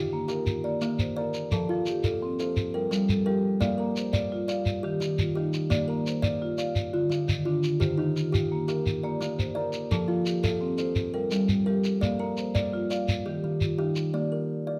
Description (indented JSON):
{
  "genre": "southern african traditional, mbira-style interlocking cycle",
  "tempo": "114 BPM (dotted quarters)",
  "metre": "12/8",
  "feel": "straight",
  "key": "Bb major",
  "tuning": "A4 = 440 Hz",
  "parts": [
    { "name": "kalimba", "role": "arpeggios", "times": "0.0-14.8 s", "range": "D3 to D5", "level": "-30 LUFS", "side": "equal", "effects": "none" },
    { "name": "marimba with medium mallets", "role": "arpeggios", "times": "0.0-14.5 s", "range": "D3 to A5", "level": "-33 LUFS", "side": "equal", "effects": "none" },
    { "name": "shekere", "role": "percussion", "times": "0.3-14.1 s", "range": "none", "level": "-33 LUFS", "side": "equal", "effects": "none" }
  ],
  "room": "light reverb",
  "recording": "close, detailed microphones",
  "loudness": "-27 LUFS",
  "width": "mono",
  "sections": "0.0-14.1 A section",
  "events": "none",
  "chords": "0.5 Bb; 1.5 F; 2.6 Gm; 3.6 Bb; 4.7 Eb; 5.7 Bb; 6.8 Dm; 7.8 Eb; 8.9 Bb; 9.9 F; 11.0 Gm; 12.0 Bb; 13.1 Eb; 14.1 Bb"
}